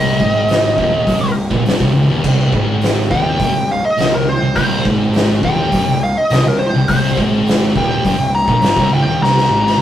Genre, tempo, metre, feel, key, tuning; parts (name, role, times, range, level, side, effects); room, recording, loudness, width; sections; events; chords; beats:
stoner and doom metal; 103 BPM; 4/4; straight; C minor; A4 = 445 Hz
fuzz lead guitar; melody; 0.0-9.8 s; Bb4 to Bb5; -16 LUFS; equal; wah, distortion
thick fuzz guitar; riff; 0.0-9.8 s; C2 to Bb2; -16 LUFS; equal; distortion
fuzz picked electric bass; bass; 0.0-9.8 s; C1 to Bb1; -23 LUFS; equal; overdrive, tube saturation
oversized low-tuned drum kit; drums; 0.2-9.8 s; crash cymbal, hi-hat, kick drum, snare drum, toms; -18 LUFS; equal
light reverb; rough rehearsal-room recording, tube saturation; -12 LUFS; side -11 dB against mid
0.0-9.8 A section
lead electric guitar solo 0.0-9.8; drum fill 9.2-9.8
0.0 Cm
0.49 1.08 1.66 | 2.24 2.82 3.40 3.98 | 4.56 5.14 5.72 6.30 | 6.88 7.46 8.04 8.62 | 9.20 9.78